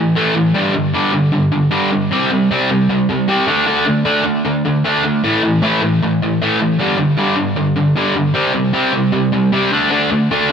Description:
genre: punk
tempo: 154 BPM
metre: 4/4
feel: straight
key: unclear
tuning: A4 = 438 Hz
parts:
  - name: distorted electric guitar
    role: solo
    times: 0.0-10.5 s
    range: G2 to D4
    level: -13 LUFS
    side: equal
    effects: distortion, digital delay
room: moderate studio reverb, RT60 1.0 s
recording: none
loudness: -13 LUFS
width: side -7 dB against mid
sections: 0.0-10.5 A section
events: none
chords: 0.0 A5; 0.6 G5; 2.1 C5; 3.5 D5; 5.2 A5; 6.8 G5; 8.3 C5; 9.7 D5

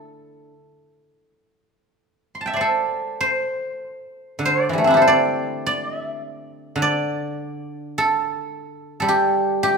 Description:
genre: chinese traditional, Chinese solo plucked strings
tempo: 48-55 BPM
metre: 4/4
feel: rubato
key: D shang mode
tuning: A4 = 441 Hz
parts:
  - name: guzheng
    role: solo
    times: 0.0-9.8 s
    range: D3 to C6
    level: -19 LUFS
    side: right 1 dB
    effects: none
room: moderate recital hall reverb, RT60 1.7 s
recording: minimal, uncompressed stereo recording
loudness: -19 LUFS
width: side -4 dB against mid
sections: 0.0-4.4 A section; 4.4-9.8 B section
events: none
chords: none

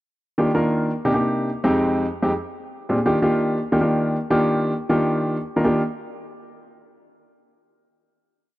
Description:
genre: jazz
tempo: 180 BPM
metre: 4/4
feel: straight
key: Eb major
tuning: A4 = 441 Hz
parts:
  - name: warm grand piano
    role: solo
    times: 0.4-5.8 s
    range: F2 to Bb4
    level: -19 LUFS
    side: equal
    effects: none
room: light reverb, small room ambience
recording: dry, close 1970s-style studio recording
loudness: -19 LUFS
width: side -17 dB against mid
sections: 0.3-5.6 A section; 5.6-7.0 final chord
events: none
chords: 0.3 Ebmaj9; 1.0 Cm9; 1.6 Fm9; 2.3 Bb13; 3.0 Ebmaj9

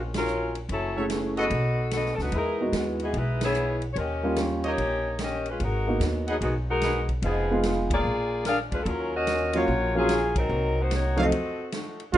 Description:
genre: jazz, big band swing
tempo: 147 BPM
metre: 4/4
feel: swing 66% on 8ths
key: Eb minor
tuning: A4 = 439 Hz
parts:
  - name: picked swing-style acoustic guitar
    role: accompaniment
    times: 0.0-12.2 s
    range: Gb2 to Ab4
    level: -39 LUFS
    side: left 2 dB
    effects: none
  - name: upright bass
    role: bass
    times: 0.0-12.2 s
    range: F1 to Bb2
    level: -30 LUFS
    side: equal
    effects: none
  - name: swinging big-band drum kit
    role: drums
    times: 0.1-12.2 s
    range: hi-hat, kick drum, ride cymbal, snare drum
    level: -34 LUFS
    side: equal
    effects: none
  - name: dark saxophone section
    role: melody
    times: 0.2-11.7 s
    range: Eb3 to F5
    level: -27 LUFS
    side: left 1 dB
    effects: none
  - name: warm grand piano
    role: accompaniment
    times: 1.0-11.3 s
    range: F2 to Ab4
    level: -27 LUFS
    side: right 1 dB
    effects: none
  - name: warm trumpet section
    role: stabs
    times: 1.0-1.5, 4.6-11.3 s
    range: Gb4 to Gb5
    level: -33 LUFS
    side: right 2 dB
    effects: none
  - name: clear trombone section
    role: second line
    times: 12.1-12.2 s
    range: Ab3 to F4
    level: -16 LUFS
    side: right 6 dB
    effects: none
room: moderate studio reverb, RT60 0.6 s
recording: rough home demo mix, nothing above 10.8 kHz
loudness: -24 LUFS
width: side -12 dB against mid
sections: 0.0-12.1 A section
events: band accent 0.1, 3.4, 7.8, 10.3; break 11.3-12.1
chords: 0.0 Ebm9; 0.7 Gbm7; 1.5 B7; 2.3 Emaj7; 4.0 Eb7; 5.6 Abm7; 7.2 Fm7b5; 8.1 Bb7; 8.9 Ebm9; 10.5 Cm7b5; 11.3 F7b9

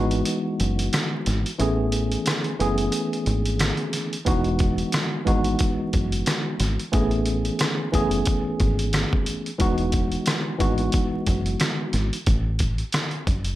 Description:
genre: hip hop, boom-bap hip-hop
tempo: 90 BPM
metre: 4/4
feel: swing 58% on 16ths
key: E major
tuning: A4 = 439 Hz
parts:
  - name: tine electric piano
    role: accompaniment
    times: 0.0-12.2 s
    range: E3 to G#4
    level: -25 LUFS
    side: equal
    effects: overdrive, fast stereo tremolo, cassette tape, high-pass filter, low-pass filter, plate reverb
  - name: deep dub fingered electric bass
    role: bass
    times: 0.0-13.5 s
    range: E1 to A1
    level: -25 LUFS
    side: equal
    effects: none
  - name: trip hop sampler-style drum kit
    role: drums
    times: 0.1-13.6 s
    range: hi-hat, kick drum, rim click, snare drum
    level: -25 LUFS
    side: equal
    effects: none
room: light reverb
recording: vinyl crackle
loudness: -21 LUFS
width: side -15 dB against mid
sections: 0.0-13.6 A section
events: break 0.0-4.3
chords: 0.0 Emaj9; 1.6 Amaj9; 4.3 Emaj9; 6.9 Amaj9; 9.6 Emaj9; 12.3 F#m

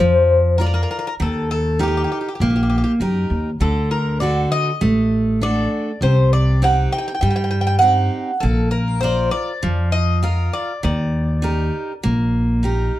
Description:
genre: greek folk, Greek bouzouki band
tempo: 100 BPM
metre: 4/4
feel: straight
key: unclear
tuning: A4 = 441 Hz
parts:
  - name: Greek bouzouki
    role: melody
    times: 0.0-12.6 s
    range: G4 to G5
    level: -21 LUFS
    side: left 1 dB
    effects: none
  - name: picked steel-string acoustic guitar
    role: accompaniment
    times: 0.0-13.0 s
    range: C3 to F5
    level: -22 LUFS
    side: right 1 dB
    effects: none
  - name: upright bass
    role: bass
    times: 0.0-12.9 s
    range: A1 to G2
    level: -19 LUFS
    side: equal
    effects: none
room: moderate studio ambience, RT60 0.5 s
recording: dark, warm production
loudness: -16 LUFS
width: side -14 dB against mid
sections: 0.0-13.0 A section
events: none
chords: 0.0 Bb; 1.2 Eb; 3.6 D; 6.0 Cm; 8.4 Bb; 10.8 Eb

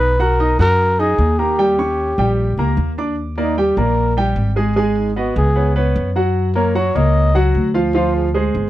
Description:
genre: Afro-Cuban jazz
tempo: 151 BPM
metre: 4/4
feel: straight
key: unclear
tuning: A4 = 440 Hz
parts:
  - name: breathy trumpet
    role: melody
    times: 0.0-8.3 s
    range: Eb4 to Eb5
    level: -18 LUFS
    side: equal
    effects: none
  - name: clear baby grand piano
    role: accompaniment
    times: 0.0-8.7 s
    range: F3 to F#6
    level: -19 LUFS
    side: right 1 dB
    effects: none
  - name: upright bass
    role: bass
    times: 0.0-8.7 s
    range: G1 to F#2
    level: -18 LUFS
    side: equal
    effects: none
room: light reverb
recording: dry, close 1970s-style studio recording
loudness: -14 LUFS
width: side -14 dB against mid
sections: 0.0-3.2 A section; 3.2-8.7 B section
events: trumpet solo 3.2-8.7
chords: 0.0 B6; 1.6 Eb7; 3.2 Ebmaj7; 4.8 Abmadd11; 5.6 Db7sus4; 6.4 Gb6; 7.9 Dm7b5

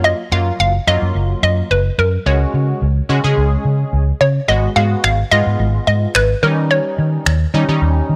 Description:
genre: dance-pop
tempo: 108 BPM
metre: 4/4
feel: straight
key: G# dorian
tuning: A4 = 439 Hz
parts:
  - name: hollow square pluck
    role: melody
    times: 0.0-8.2 s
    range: A#4 to E#5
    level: -19 LUFS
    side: equal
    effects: chorus, analog delay
  - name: funky polysynth comp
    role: accompaniment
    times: 0.0-8.2 s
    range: F#3 to G#4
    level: -24 LUFS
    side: equal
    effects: chorus
  - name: vintage muted fingered electric bass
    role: bass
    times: 0.0-8.2 s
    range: F#1 to D#3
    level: -18 LUFS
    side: equal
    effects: none
  - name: electronic finger snaps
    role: drums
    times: 5.0-7.4 s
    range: none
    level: -21 LUFS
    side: equal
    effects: overdrive
room: digital ambience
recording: dry, gritty hardware recording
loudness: -16 LUFS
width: mono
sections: 0.0-8.2 A section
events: none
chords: 0.0 F#maj7; 2.3 C#sus4; 4.5 G#m7; 6.4 D#7

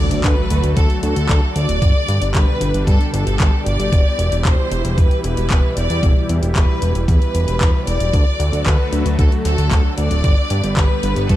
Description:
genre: italo disco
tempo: 114 BPM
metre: 4/4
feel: straight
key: G major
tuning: A4 = 441 Hz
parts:
  - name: bright symphonic violin section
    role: melody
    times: 0.0-11.4 s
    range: A4 to D5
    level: -23 LUFS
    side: left 1 dB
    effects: tape echo
  - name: warm analog pad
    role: sustained chords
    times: 0.0-11.4 s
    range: B2 to B4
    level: -24 LUFS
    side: equal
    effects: chorus
  - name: fat analog bass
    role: bass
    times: 0.0-11.4 s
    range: D1 to G2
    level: -19 LUFS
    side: equal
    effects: none
  - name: impact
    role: sound effects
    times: 0.0-1.8 s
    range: none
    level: -26 LUFS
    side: equal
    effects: none
  - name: house drum kit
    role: drums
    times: 0.1-11.4 s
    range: handclaps, hi-hat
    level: -26 LUFS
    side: left 1 dB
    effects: overdrive
  - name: electronic kick drum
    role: drums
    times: 0.2-11.4 s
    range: none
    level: -14 LUFS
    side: equal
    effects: none
room: little or no reverb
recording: dark, warm production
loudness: -14 LUFS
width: side -14 dB against mid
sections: 0.0-11.4 A section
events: impact 0.0-1.8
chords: 0.0 D; 1.8 G; 3.9 Em; 8.1 D; 10.2 G

